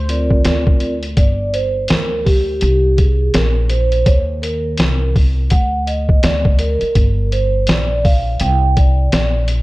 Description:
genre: hip hop, jazz-hop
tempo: 83 BPM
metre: 4/4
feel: swing 61% on 16ths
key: unclear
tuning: A4 = 438 Hz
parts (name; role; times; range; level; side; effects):
- upright bass; bass; 0.0-9.6 s; G1 to Eb2; -17 LUFS; equal; none
- vibraphone with soft mallets; accompaniment; 0.1-9.4 s; C4 to G5; -19 LUFS; right 2 dB; none
- lo-fi sampler-style drum kit; drums; 0.1-9.6 s; hi-hat, kick drum, snare drum; -15 LUFS; equal; none
room: small room ambience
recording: dark, warm production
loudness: -13 LUFS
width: side -19 dB against mid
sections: 0.0-1.2 A section; 1.2-9.6 B section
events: vibraphone solo 1.2-9.6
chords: 0.0 Bbadd9/D; 1.2 G5; 2.6 C5; 3.3 Bbsus2; 4.1 Eb5; 5.5 D; 7.0 Gm; 8.4 Csus2; 9.1 Bb

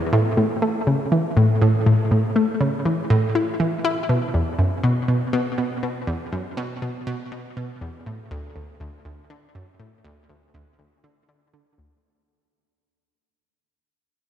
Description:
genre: ambient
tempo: 121 BPM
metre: 4/4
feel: straight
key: unclear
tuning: A4 = 440 Hz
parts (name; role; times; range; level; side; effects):
- analog pluck; solo; 0.1-11.9 s; D2 to E4; -20 LUFS; equal; chorus, tape echo
room: wet plate reverb, RT60 3.6 s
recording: dreamy mix soaked in reverb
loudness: -19 LUFS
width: side -10 dB against mid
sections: 0.0-12.0 A section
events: fade-out 0.0-12.0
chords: none

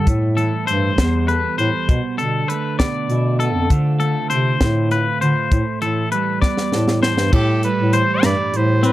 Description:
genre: math rock and midwest emo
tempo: 66 BPM (dotted quarters)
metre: 6/8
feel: straight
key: A minor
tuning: A4 = 440 Hz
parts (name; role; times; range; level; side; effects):
- twelve-string electric guitar; accompaniment; 0.0-8.9 s; E2 to A4; -23 LUFS; right 6 dB; none
- twangy electric guitar; arpeggios; 0.0-8.9 s; C4 to B5; -22 LUFS; left 5 dB; spring reverb
- breathy bass clarinet; bass; 0.0-8.9 s; E2 to D3; -19 LUFS; equal; none
- crisp fusion drum kit; drums; 0.1-8.9 s; crash cymbal, hi-hat, kick drum, snare drum; -19 LUFS; equal; none
- clear trumpet; melody; 7.3-8.9 s; G4 to D5; -21 LUFS; right 1 dB; none
room: little or no reverb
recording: dry, close 1970s-style studio recording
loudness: -16 LUFS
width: side -15 dB against mid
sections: 0.0-7.3 A section; 7.3-8.9 B section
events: drum fill 6.4-7.3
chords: 0.1 Am9; 1.9 Gadd9/B; 3.7 Dm7; 5.5 Am9

